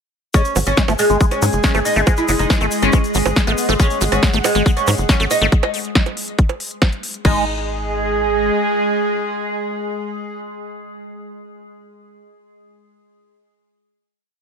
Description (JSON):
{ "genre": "psychedelic trance", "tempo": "139 BPM", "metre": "4/4", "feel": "straight", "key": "unclear", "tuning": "A4 = 440 Hz", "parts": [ { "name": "oud", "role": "melody", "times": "0.3-10.4 s", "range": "G#3 to E4", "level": "-21 LUFS", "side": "equal", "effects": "phaser, sidechain pumping, ping-pong delay" }, { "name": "evolving wavetable pad", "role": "sustained chords", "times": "1.1-10.4 s", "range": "G#3 to G#4", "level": "-25 LUFS", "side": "left 2 dB", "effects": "chorus, built-in reverb, vintage 12-bit sampler grit, sidechain pumping" }, { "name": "liquid acid bass", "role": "riff", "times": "0.3-7.5 s", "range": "F#3 to A3", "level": "-22 LUFS", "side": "moving between left 4 dB and right 4 dB", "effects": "phaser, auto-pan, sidechain pumping, ping-pong delay" }, { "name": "electronic kick drum", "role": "drums", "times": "0.3-7.3 s", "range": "none", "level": "-15 LUFS", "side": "equal", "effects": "overdrive" }, { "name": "techno drum kit", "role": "drums", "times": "0.3-7.3 s", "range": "bongos, crash cymbal, hi-hat, snare drum", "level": "-22 LUFS", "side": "right 2 dB", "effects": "none" }, { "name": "tube shaker", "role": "percussion", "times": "0.3-5.5 s", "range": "none", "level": "-29 LUFS", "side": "left 5 dB", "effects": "none" }, { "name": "airy breathy pad", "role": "texture", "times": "0.6-10.5 s", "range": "G#4 to G#5", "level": "-24 LUFS", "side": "right 4 dB", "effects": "chorus, sidechain pumping" }, { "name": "tight sequencer bass", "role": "bass", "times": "0.6-8.5 s", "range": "F#1 to G#2", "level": "-21 LUFS", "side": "equal", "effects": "none" } ], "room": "light reverb", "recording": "none", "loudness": "-15 LUFS", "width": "side -6 dB against mid", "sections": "0.3-7.2 groove; 7.2-10.7 final chord", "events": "none", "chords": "0.3 G#5" }